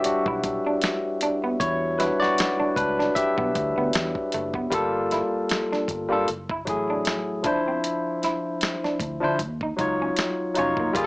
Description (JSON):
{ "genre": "R&B, neo-soul", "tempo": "77 BPM", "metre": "4/4", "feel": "swing 55% on 16ths", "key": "unclear", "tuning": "A4 = 440 Hz", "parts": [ { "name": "barky tine electric piano", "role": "accompaniment", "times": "0.0-11.1 s", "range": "F3 to E5", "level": "-23 LUFS", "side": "left 1 dB", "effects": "wide subtle chorus" }, { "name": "dusty soul sampler-style drum kit", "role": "drums", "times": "0.0-11.1 s", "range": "hi-hat, kick drum, snare drum", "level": "-28 LUFS", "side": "equal", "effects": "none" }, { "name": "vintage muted fingered electric bass", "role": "bass", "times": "0.1-11.1 s", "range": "E#1 to D3", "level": "-35 LUFS", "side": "equal", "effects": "none" }, { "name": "electric guitar through a small old amp", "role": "second line", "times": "0.3-10.9 s", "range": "A3 to E4", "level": "-28 LUFS", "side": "right 2 dB", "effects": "none" } ], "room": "moderate studio reverb, RT60 0.6 s", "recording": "small speaker sound", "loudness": "-22 LUFS", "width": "side -24 dB against mid", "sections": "0.0-4.7 A section; 4.7-11.1 B section", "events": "tine electric piano solo 0.0-4.7", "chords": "0.0 Em9; 4.7 Gm9; 6.3 F#m9; 7.4 Dm9; 9.4 D#m9" }